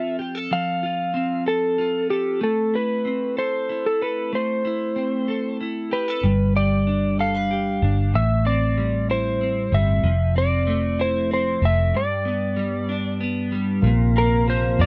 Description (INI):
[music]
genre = six-eight pop ballad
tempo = 63 BPM (dotted quarters)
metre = 6/8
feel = straight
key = unclear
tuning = A4 = 440 Hz
[part]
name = electric slide guitar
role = melody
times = 0.0-14.9 s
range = G4 to F5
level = -26 LUFS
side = equal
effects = none
[part]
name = clean electric guitar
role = accompaniment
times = 0.0-14.9 s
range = G2 to B4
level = -27 LUFS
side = equal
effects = double-tracked
[part]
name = vintage muted fingered electric bass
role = bass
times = 6.2-14.9 s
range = F1 to F2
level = -24 LUFS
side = equal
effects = none
[part]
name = tonewheel organ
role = sustained chords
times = 13.8-14.9 s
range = C3 to Bb4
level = -30 LUFS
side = equal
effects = overdrive, stopped rotary speaker
[sound]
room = light reverb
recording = dry, close 1970s-style studio recording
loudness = -22 LUFS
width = mono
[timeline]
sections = 0.0-6.2 A section; 6.2-13.8 B section; 13.8-14.9 C section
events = break 11.9-13.8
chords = 0.0 F; 2.4 Am; 6.2 G; 8.1 Am7; 10.0 Fmaj7; 11.9 G; 13.8 Bbsus2